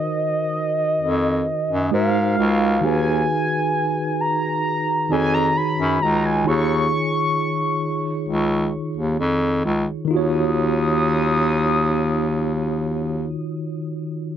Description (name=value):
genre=contemporary R&B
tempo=66 BPM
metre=4/4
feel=straight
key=Eb minor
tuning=A4 = 440 Hz
part: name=mellow horn-like synth lead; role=melody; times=0.0-13.3 s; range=Eb5 to Eb6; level=-23 LUFS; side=equal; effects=chorus, tape echo
part: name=mellow tine electric piano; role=accompaniment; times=0.0-14.4 s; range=Eb3 to Db5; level=-23 LUFS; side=right 1 dB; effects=medium stereo tremolo
part: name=clear bass clarinet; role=bass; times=1.0-13.3 s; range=Db2 to Ab2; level=-21 LUFS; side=equal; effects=none
room=light reverb, small room reverb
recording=none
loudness=-18 LUFS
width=side -9 dB against mid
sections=0.0-10.1 A section; 10.1-13.7 B section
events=none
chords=0.0 Ebm69; 1.9 Ab7; 2.8 Db9sus4/Eb; 6.5 Dbadd9; 10.1 Ebm9